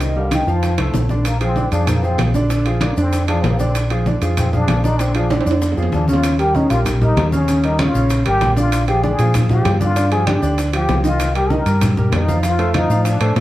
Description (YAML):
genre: Afro-Cuban jazz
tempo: 193 BPM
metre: 4/4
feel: straight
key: Bb mixolydian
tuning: A4 = 439 Hz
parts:
  - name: vibraphone with soft mallets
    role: melody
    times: 0.0-1.1 s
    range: Eb5 to A5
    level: -26 LUFS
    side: left 2 dB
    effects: none
  - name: trombone with plunger mute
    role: second line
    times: 0.0-13.4 s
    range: C3 to Bb4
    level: -22 LUFS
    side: left 1 dB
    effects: none
  - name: warm grand piano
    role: accompaniment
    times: 0.0-13.4 s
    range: Db3 to F5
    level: -20 LUFS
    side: right 1 dB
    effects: none
  - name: hollow-body short-scale fingered electric bass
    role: bass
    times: 0.0-13.4 s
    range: Ab1 to Bb2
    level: -18 LUFS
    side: equal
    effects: none
  - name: bongos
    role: percussion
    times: 0.0-13.4 s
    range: none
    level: -28 LUFS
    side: left 2 dB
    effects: none
  - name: congas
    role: percussion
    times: 0.0-13.4 s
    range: none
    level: -23 LUFS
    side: left 1 dB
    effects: none
  - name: maracas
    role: percussion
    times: 0.0-13.4 s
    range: none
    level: -37 LUFS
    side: left 3 dB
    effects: none
  - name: timbales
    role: percussion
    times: 0.0-13.4 s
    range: none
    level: -27 LUFS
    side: right 4 dB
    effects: none
room: moderate studio reverb, RT60 0.7 s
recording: heard from further back in the room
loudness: -14 LUFS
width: side -15 dB against mid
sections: 0.0-1.3 A section; 1.3-13.4 B section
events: drum fill 0.8-1.3, 5.3-6.2; trombone solo 1.3-13.4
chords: 0.0 Cm7; 0.6 F6; 1.3 Bb9; 6.2 Eb9; 8.7 Bb6; 10.0 G5; 11.2 Cm7; 12.4 F6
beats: | 0.01 0.32 0.63 0.95 | 1.26 1.57 1.88 2.19 | 2.51 2.82 3.13 3.44 | 3.75 4.06 4.38 4.69 | 5.00 5.31 5.62 5.93 | 6.24 6.55 6.86 7.17 | 7.48 7.79 8.10 8.41 | 8.72 9.03 9.34 9.65 | 9.96 10.27 10.58 10.89 | 11.20 11.51 11.82 12.13 | 12.44 12.75 13.06 13.37